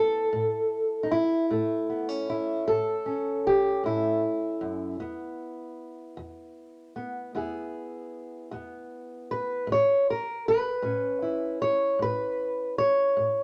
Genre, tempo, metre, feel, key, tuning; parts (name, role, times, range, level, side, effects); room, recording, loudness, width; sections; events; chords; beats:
acoustic country blues, solo or duo; 51 BPM (dotted quarters); 12/8; straight; A4 = 440 Hz
fingerpicked old ladder-braced acoustic guitar; solo; 0.0-13.4 s; E2 to C#5; -28 LUFS; equal
wet studio reverb, RT60 0.6 s; -27 LUFS; mono
0.0-13.4 A section
0.3 A; 5.0 E; 9.7 A
| 0.32 1.49 2.66 3.83 | 5.00 6.17 7.33 8.50 | 9.67 10.83 12.00 13.16